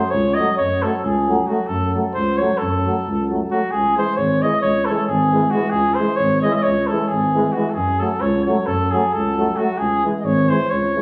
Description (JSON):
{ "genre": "balkan folk, Balkan brass band", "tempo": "267 BPM (eighths)", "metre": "9/8", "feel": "straight", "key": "C# harmonic minor", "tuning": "A4 = 440 Hz", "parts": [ { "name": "warm flugelhorn", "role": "melody", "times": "0.0-11.0 s", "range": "F#4 to E5", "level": "-22 LUFS", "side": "equal", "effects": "none" }, { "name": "mellow tuba", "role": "bass", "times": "0.1-11.0 s", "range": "G#1 to F#2", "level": "-24 LUFS", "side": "equal", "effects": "none" }, { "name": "bright trombone", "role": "accompaniment", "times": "0.4-11.0 s", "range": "G#3 to A3", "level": "-28 LUFS", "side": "equal", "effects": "none" }, { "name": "clear euphonium", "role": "accompaniment", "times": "0.4-11.0 s", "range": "E3 to F#3", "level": "-28 LUFS", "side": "equal", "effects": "none" } ], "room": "wet large studio reverb, RT60 1.4 s", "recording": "band playing live in one room, studio ambience", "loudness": "-19 LUFS", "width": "mono", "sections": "0.0-11.0 A section", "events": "none", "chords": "0.0 F#m; 3.7 C#m; 7.8 F#m; 9.8 C#m", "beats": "0.12 0.35 0.57 0.80 1.02 1.25 1.47 | 1.69 1.92 2.14 2.37 2.59 2.82 3.04 3.27 3.49 | 3.71 3.94 4.16 4.39 4.61 4.84 5.06 5.29 5.51 | 5.74 5.96 6.19 6.41 6.64 6.86 7.08 7.31 7.54 | 7.76 7.99 8.21 8.43 8.66 8.88 9.11 9.33 9.56 | 9.78 10.01 10.23 10.46 10.69 10.91" }